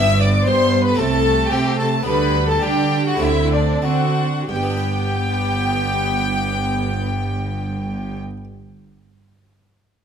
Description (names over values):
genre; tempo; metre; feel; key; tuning
classical, baroque-style concerto movement with solo episodes; 90-120 BPM; 4/4; straight; G major; A4 = 443 Hz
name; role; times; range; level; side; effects
clear violin; melody; 0.0-8.2 s; D4 to G5; -26 LUFS; left 4 dB; none
rich chamber violin section; melody; 0.0-8.2 s; D5 to E6; -26 LUFS; left 1 dB; none
dark chamber violin section; second line; 0.0-8.2 s; D4 to E5; -24 LUFS; left 3 dB; none
harpsichord; accompaniment; 0.0-8.4 s; G2 to B4; -28 LUFS; equal; none
warm symphonic viola section; accompaniment; 0.0-8.2 s; G3 to C4; -26 LUFS; right 2 dB; none
rich studio cello section; bass; 0.0-8.2 s; G2 to D4; -24 LUFS; right 2 dB; none
rich studio double bass section; bass; 0.0-8.2 s; G1 to D3; -23 LUFS; right 3 dB; none
room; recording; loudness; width
moderate recital hall reverb, RT60 1.5 s; close, detailed microphones; -17 LUFS; side -7 dB against mid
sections
0.0-4.5 A section; 4.5-9.8 B section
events
slowing down 0.0-4.5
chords
0.0 G; 1.0 Am/C; 2.1 G/D; 3.2 D7; 4.5 G